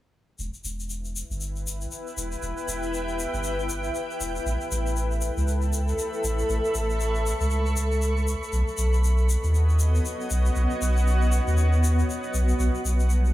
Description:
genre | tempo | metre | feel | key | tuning
deep house | 118 BPM | 4/4 | swing 59% on 16ths | E dorian | A4 = 443 Hz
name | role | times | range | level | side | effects
warm sub bass | bass | 0.4-13.3 s | E1 to D#2 | -23 LUFS | equal | none
tube shaker | percussion | 0.4-13.3 s | none | -36 LUFS | left 3 dB | none
granular cloud pad | texture | 1.8-13.3 s | G3 to C#6 | -28 LUFS | left 1 dB | built-in reverb
room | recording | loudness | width
light reverb, studio reverb | small room ambience | -23 LUFS | side -15 dB against mid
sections
0.4-13.3 A section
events
none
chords
0.4 Em; 4.5 A9; 8.5 B7; 12.3 G/B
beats
| 0.39 0.90 1.41 1.92 | 2.42 2.93 3.44 3.95 | 4.46 4.97 5.48 5.99 | 6.49 7.00 7.51 8.02 | 8.53 9.04 9.54 10.05 | 10.56 11.07 11.58 12.09 | 12.60 13.10

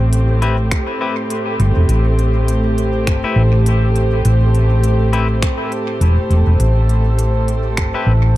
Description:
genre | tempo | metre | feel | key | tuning
ambient dub | 102 BPM | 4/4 | swing 58% on 16ths | A minor | A4 = 440 Hz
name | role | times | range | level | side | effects
dark studio string section | sustained chords | 0.0-8.4 s | A2 to C5 | -20 LUFS | equal | none
hollow-body short-scale fingered electric bass | bass | 0.0-8.4 s | E1 to A1 | -13 LUFS | equal | none
bubbling stepped-filter texture | texture | 0.1-8.4 s | A4 | -28 LUFS | right 9 dB | chorus, built-in reverb
organic electronic drum kit | drums | 0.1-7.9 s | finger snaps, hi-hat | -27 LUFS | equal | dub echo
clean electric guitar | stabs | 0.4-8.1 s | C4 to B4 | -26 LUFS | left 5 dB | dub echo
electronic kick drum | drums | 0.7-7.9 s | none | -19 LUFS | equal | none
room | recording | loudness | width
digital ambience | echo-heavy mix | -13 LUFS | side -16 dB against mid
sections
0.0-8.4 A section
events
none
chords
0.0 Am7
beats
0.13 0.72 1.31 | 1.90 2.48 3.07 3.66 | 4.25 4.84 5.42 6.01 | 6.60 7.19 7.78 8.37

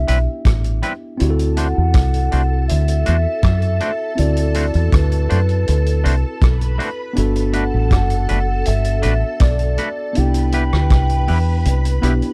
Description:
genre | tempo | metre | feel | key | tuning
lovers rock reggae | 80 BPM | 4/4 | straight | unclear | A4 = 439 Hz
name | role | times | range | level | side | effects
hollow clarinet-like synth lead | melody | 0.0-12.3 s | B4 to G5 | -28 LUFS | equal | chorus, tape echo
tine electric piano | accompaniment | 0.0-12.3 s | B3 to A4 | -28 LUFS | equal | overdrive, tape echo
deep dub fingered electric bass | bass | 0.0-12.2 s | F#1 to F#2 | -19 LUFS | equal | none
twangy electric guitar | stabs | 0.1-12.1 s | G3 to C5 | -25 LUFS | equal | none
vintage drum kit | drums | 0.1-12.3 s | hi-hat, kick drum, rim click | -22 LUFS | equal | none
soft string machine | second line | 1.2-12.3 s | A4 to B5 | -32 LUFS | equal | ensemble chorus
room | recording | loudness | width
little or no reverb | dry, close 1970s-style studio recording | -17 LUFS | mono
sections
0.0-12.3 A section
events
none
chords
0.0 Cmaj7; 1.2 D7; 7.2 Gmaj9; 10.2 Cmaj7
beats
0.45 | 1.19 1.94 2.68 3.43 | 4.18 4.92 5.67 6.42 | 7.17 7.91 8.66 9.41 | 10.15 10.90 11.65

